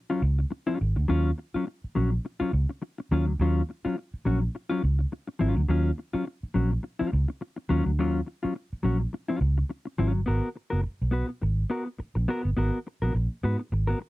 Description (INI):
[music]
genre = funk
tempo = 104 BPM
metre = 4/4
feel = swing 56% on 16ths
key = Eb minor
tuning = A4 = 440 Hz
[part]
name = mellow electric guitar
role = accompaniment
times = 0.1-14.0 s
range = Gb3 to Cb5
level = -28 LUFS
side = left 2 dB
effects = none
[part]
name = vintage muted fingered electric bass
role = bass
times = 0.2-13.9 s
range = Gb1 to Ab2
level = -25 LUFS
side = right 1 dB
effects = none
[sound]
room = little or no reverb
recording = dry, close 1970s-style studio recording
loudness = -25 LUFS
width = side -18 dB against mid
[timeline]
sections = 0.0-10.3 A section; 10.3-14.1 B section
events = none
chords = 0.0 Ebm9 (rootless); 10.3 Abm9